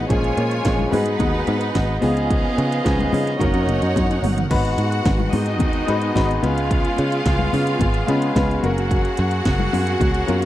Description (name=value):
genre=disco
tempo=109 BPM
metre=4/4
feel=straight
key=G# dorian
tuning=A4 = 440 Hz
part: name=clear studio string section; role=second line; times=0.0-10.5 s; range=B3 to G#5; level=-25 LUFS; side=right 1 dB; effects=none
part: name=clear grand piano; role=accompaniment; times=0.0-10.5 s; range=E#3 to B4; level=-25 LUFS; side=left 2 dB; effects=none
part: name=muted French horn section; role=sustained chords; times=0.0-10.5 s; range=C#3 to D#5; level=-28 LUFS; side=right 1 dB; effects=none
part: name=picked electric bass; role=bass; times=0.0-10.5 s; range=F#1 to C#3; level=-22 LUFS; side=equal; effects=none
part: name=house drum kit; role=drums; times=0.1-10.5 s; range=crash cymbal, hi-hat, kick drum, snare drum, toms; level=-23 LUFS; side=right 1 dB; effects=none
part: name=congas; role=percussion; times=0.4-10.4 s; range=none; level=-28 LUFS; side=left 7 dB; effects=none
room=little or no reverb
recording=dry, close 1970s-style studio recording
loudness=-17 LUFS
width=side -14 dB against mid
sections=0.0-4.5 A section; 4.5-10.5 B section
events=drum fill 4.0-4.5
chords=0.1 A#m7; 0.9 G#m7; 2.0 C#9; 3.4 F#6; 4.5 G#m7; 6.4 C#7; 8.6 F#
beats=| 0.10 0.65 1.20 1.75 | 2.31 2.85 3.41 3.96 | 4.51 5.06 5.61 6.16 | 6.71 7.26 7.81 8.36 | 8.91 9.46 10.01